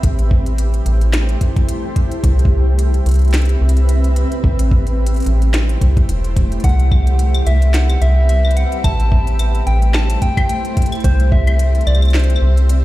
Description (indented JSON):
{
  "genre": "IDM",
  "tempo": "109 BPM",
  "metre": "4/4",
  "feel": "swing 56% on 16ths",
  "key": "C lydian",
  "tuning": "A4 = 441 Hz",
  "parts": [
    { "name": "granular cloud pad", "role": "sustained chords", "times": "0.0-12.8 s", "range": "A3 to E5", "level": "-24 LUFS", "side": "right 1 dB", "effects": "built-in reverb" },
    { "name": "metallic FM bass", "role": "bass", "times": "0.0-12.8 s", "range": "E1 to C2", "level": "-13 LUFS", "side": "equal", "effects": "tube saturation" },
    { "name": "electronic kick drum", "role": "drums", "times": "0.0-11.4 s", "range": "none", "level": "-14 LUFS", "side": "equal", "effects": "none" },
    { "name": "organic electronic drum kit", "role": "drums", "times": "0.0-12.8 s", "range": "claves, hi-hat, snare drum", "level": "-25 LUFS", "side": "left 1 dB", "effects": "none" },
    { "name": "soft struck synth lead", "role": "melody", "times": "6.6-12.8 s", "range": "C5 to A5", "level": "-23 LUFS", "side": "left 2 dB", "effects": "chorus, tape echo" }
  ],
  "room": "little or no reverb",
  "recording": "played on a big sound system in a bare room, stone room reverb",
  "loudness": "-12 LUFS",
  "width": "side -16 dB against mid",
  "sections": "0.0-12.8 A section",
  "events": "none",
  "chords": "0.0 Am7; 2.2 Cmaj7; 4.4 Am7; 6.6 Cmaj7; 8.8 Am7; 11.0 C",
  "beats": "| 0.04 0.58 1.14 1.69 | 2.24 2.79 3.34 3.89 | 4.44 4.99 5.54 6.09 | 6.64 7.19 7.74 8.29 | 8.84 9.39 9.94 10.49 | 11.04 11.59 12.14 12.70"
}